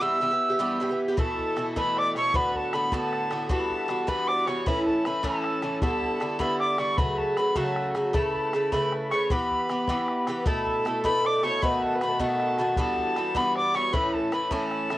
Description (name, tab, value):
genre	celtic folk, Celtic jig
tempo	103 BPM (dotted quarters)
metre	6/8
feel	straight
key	unclear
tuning	A4 = 440 Hz
part	mid whistle	melody	0.0-15.0 s	A5 to E6	-28 LUFS	equal	cassette tape
part	dark fiddle	second line	0.0-15.0 s	A4 to E5	-34 LUFS	left 2 dB	cassette tape
part	Irish bouzouki	accompaniment	0.0-15.0 s	G2 to B4	-26 LUFS	equal	cassette tape
part	bodhran	percussion	1.2-15.0 s	none	-30 LUFS	left 1 dB	none
room	moderate booth ambience, RT60 0.2 s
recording	home recording on cassette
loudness	-23 LUFS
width	side -15 dB against mid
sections	0.0-1.2 A section; 1.2-10.5 B section; 10.5-15.0 B section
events	none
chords	0.0 Em; 1.2 Asus2; 2.3 Bm7; 3.5 Emadd9; 4.7 A; 5.8 G6; 7.0 F#m; 8.1 Aadd9; 9.3 Em; 10.5 Asus2; 11.6 B7; 12.8 Emadd9; 13.9 A